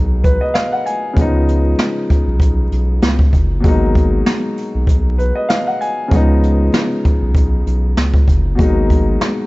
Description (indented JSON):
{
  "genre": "hip hop, boom-bap hip-hop",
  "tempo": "97 BPM",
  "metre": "4/4",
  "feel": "swing 56% on 16ths",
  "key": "G# dorian",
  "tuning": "A4 = 440 Hz",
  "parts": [
    { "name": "dark upright piano", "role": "accompaniment", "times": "0.0-9.5 s", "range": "B2 to G#5", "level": "-18 LUFS", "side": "left 1 dB", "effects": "cassette tape, high-pass filter, low-pass filter" },
    { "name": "saturated sub bass", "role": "bass", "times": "0.0-9.2 s", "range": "F#1 to C#2", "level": "-16 LUFS", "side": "equal", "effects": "none" },
    { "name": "jazz brush drum kit", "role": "drums", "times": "0.2-9.4 s", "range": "hi-hat, kick drum, snare drum", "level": "-15 LUFS", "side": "equal", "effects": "none" }
  ],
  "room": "small room ambience",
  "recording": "vinyl crackle, nothing above 7.7 kHz",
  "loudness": "-12 LUFS",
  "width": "side -21 dB against mid",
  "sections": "0.0-9.5 A section",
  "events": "none",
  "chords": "0.0 G#m7; 1.2 C#7; 3.6 G#m7; 6.1 C#7; 8.6 G#m7",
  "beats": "0.55 | 1.17 1.79 2.40 3.02 | 3.64 4.26 4.88 5.50 | 6.12 6.73 7.35 7.97 | 8.59 9.21"
}